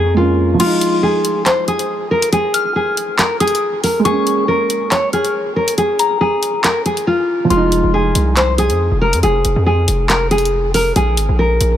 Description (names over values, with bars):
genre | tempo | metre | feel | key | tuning
hip hop, drill | 139 BPM | 4/4 | half-time | F minor | A4 = 440 Hz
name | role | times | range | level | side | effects
nylon-string guitar | melody | 0.0-11.8 s | F4 to Db5 | -16 LUFS | left 1 dB | low-pass filter, tape echo
felt-muted upright piano | accompaniment | 0.0-11.0 s | F3 to Eb4 | -20 LUFS | right 5 dB | low-pass filter
warm analog pad | sustained chords | 0.0-0.6 s | none | barely audible | none | none
hard-hitting 808-style bass | bass | 0.0-0.6, 7.5-11.8 s | F1 to F2 | -16 LUFS | equal | none
soft synth bell | second line | 0.6-8.8 s | Bb5 to F6 | -23 LUFS | left 5 dB | chorus, tape echo
drill drum kit | drums | 0.6-11.7 s | crash cymbal, handclaps, hi-hat | -20 LUFS | left 1 dB | none
room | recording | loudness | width
light reverb | none | -13 LUFS | side -11 dB against mid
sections
0.6-11.8 A section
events
break 0.6-7.5; silent gap 7.1-7.5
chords
0.0 Bbm7; 0.6 Fm7; 4.1 Bbm7; 7.5 Fm7; 11.0 Bb5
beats
0.17 | 0.60 1.03 1.46 1.89 | 2.33 2.76 3.19 3.62 | 4.05 4.48 4.92 5.35 | 5.78 6.21 6.64 7.07 | 7.50 7.94 8.37 8.80 | 9.23 9.66 10.10 10.53 | 10.96 11.39